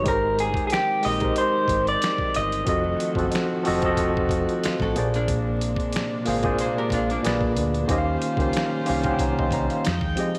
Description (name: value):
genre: R&B, neo-soul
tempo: 92 BPM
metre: 4/4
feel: swing 55% on 16ths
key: F dorian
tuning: A4 = 439 Hz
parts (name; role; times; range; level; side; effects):
- electric guitar through a small old amp; melody; 0.0-3.3 s; G4 to Eb5; -26 LUFS; equal; slapback echo
- mellow tine electric piano; accompaniment; 0.0-10.4 s; Bb2 to C6; -27 LUFS; equal; overdrive
- warm studio string section; sustained chords; 0.0-10.4 s; Bb2 to G5; -35 LUFS; equal; none
- deep dub fingered electric bass; bass; 0.0-10.1 s; F1 to F2; -31 LUFS; equal; none
- boom bap sampler-style drum kit; drums; 0.1-10.4 s; finger snaps, hi-hat, kick drum, snare drum; -31 LUFS; equal; none
- archtop guitar, miked and amplified; second line; 4.6-7.4 s; Bb3 to C5; -35 LUFS; equal; slapback echo
room: light reverb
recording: vinyl crackle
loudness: -23 LUFS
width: mono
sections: 0.0-10.4 A section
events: none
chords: 0.1 Abmaj7; 2.7 F7b9; 5.0 Bb9; 7.2 Bb7b9; 7.9 Eb13; 9.8 Fm9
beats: | 0.06 0.71 1.37 2.02 | 2.67 3.32 3.98 4.63 | 5.28 5.93 6.58 7.24 | 7.89 8.54 9.19 9.85